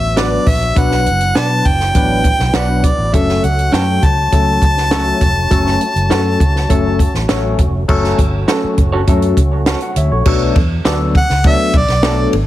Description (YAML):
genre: uptempo 1960s-style soul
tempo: 101 BPM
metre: 4/4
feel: straight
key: B minor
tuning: A4 = 440 Hz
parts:
  - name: warm harmonica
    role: melody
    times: 0.0-7.3, 11.2-12.3 s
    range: D5 to A5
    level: -17 LUFS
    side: equal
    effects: none
  - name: percussive tonewheel organ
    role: sustained chords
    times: 0.0-10.2 s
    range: F#3 to F#4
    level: -27 LUFS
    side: equal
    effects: overdrive, slow rotary speaker
  - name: vintage muted fingered electric bass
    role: bass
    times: 0.0-12.5 s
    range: E#1 to B2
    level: -17 LUFS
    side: equal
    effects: none
  - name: barky tine electric piano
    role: accompaniment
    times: 0.2-12.3 s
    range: F#3 to F#5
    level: -18 LUFS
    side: left 3 dB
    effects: overdrive, phaser
  - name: electric guitar through a small old amp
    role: stabs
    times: 0.2-12.1 s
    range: B3 to D5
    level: -25 LUFS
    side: right 4 dB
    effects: analog delay
  - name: compact cocktail drum kit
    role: drums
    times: 0.2-12.5 s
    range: crash cymbal, hi-hat, kick drum, ride cymbal, snare drum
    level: -16 LUFS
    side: equal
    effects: none
room: light reverb, studio reverb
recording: heavily compressed radio sound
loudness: -11 LUFS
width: side -14 dB against mid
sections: 0.0-7.9 A section; 7.9-10.3 B section; 10.3-12.5 C section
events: none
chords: 0.0 Bm; 3.1 F#m; 10.3 Bm7